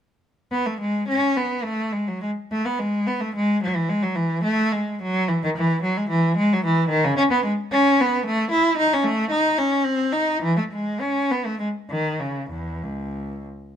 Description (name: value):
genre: classical, baroque-style suite movement for unaccompanied cello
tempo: 94-115 BPM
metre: 3/4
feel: rubato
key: E major, C# minor from 7.2 s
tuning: A4 = 440 Hz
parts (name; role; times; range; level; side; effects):
- rich cello; solo; 0.5-13.5 s; C#2 to E4; -20 LUFS; equal; none
room: light reverb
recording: none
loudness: -20 LUFS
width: side -9 dB against mid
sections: 0.5-13.8 A section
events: none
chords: none